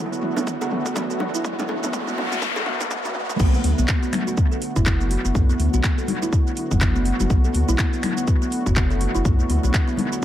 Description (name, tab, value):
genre	afro house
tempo	123 BPM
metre	4/4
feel	swing 59% on 16ths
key	B minor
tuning	A4 = 440 Hz
part	warm analog pad	sustained chords	0.0-10.2 s	D3 to F#4	-30 LUFS	equal	chorus, sidechain pumping
part	riser and noise sweep	sound effects	0.0-3.4 s	none	-28 LUFS	left 1 dB	none
part	kalimba	arpeggios	0.1-10.2 s	A3 to A4	-27 LUFS	right 1 dB	sidechain pumping, tape echo
part	house drum kit	drums	0.1-10.2 s	crash cymbal, finger snaps, handclaps, hi-hat, shaker, toms	-28 LUFS	equal	analog delay
part	bongos	percussion	0.4-3.1 s	none	-32 LUFS	right 3 dB	analog delay
part	electronic kick drum	drums	0.5-9.9 s	none	-20 LUFS	equal	high-pass filter on kick, high-pass filter on room
part	warm sub bass	bass	3.4-9.7 s	F#1 to D2	-21 LUFS	equal	sidechain pumping
part	congas	percussion	3.4-10.1 s	none	-29 LUFS	left 4 dB	none
room	light reverb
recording	echo-heavy mix, high-pass filter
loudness	-19 LUFS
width	side -12 dB against mid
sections	0.0-3.4 A section; 3.4-10.2 B section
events	build-up 0.0-3.4; drum fill 0.0-3.4; riser 0.0-3.4; filter sweep on kalimba 0.0-3.4; filter sweep 0.0-3.4; noise sweep 1.4-3.4; drop 3.4-10.2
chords	0.0 Bm7